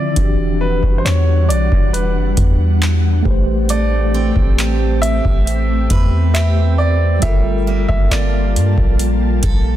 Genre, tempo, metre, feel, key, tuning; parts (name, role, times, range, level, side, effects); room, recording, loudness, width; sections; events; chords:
contemporary R&B; 68 BPM; 4/4; straight; A4 = 440 Hz
clear grand piano; melody; 0.0-9.8 s; B4 to E5; -23 LUFS; equal; digital delay
mellow tine electric piano; accompaniment; 0.0-9.8 s; D3 to C5; -24 LUFS; left 1 dB; medium stereo tremolo
ethereal airy pad; sustained chords; 0.0-9.8 s; D3 to A5; -24 LUFS; left 1 dB; ensemble chorus, built-in reverb, sidechain pumping
clean 808-style bass; bass; 0.2-9.8 s; E1 to G2; -16 LUFS; equal
booming analog drum machine; drums; 0.2-9.6 s; handclaps, hi-hat, kick drum; -17 LUFS; equal
picked steel-string acoustic guitar; arpeggios; 3.7-9.8 s; G3 to B4; -26 LUFS; right 9 dB; digital delay
digital ambience; dense, heavily limited modern master; -13 LUFS; side -12 dB against mid
0.0-9.8 A section
0.2 Em9; 3.3 Am9; 7.2 Gm9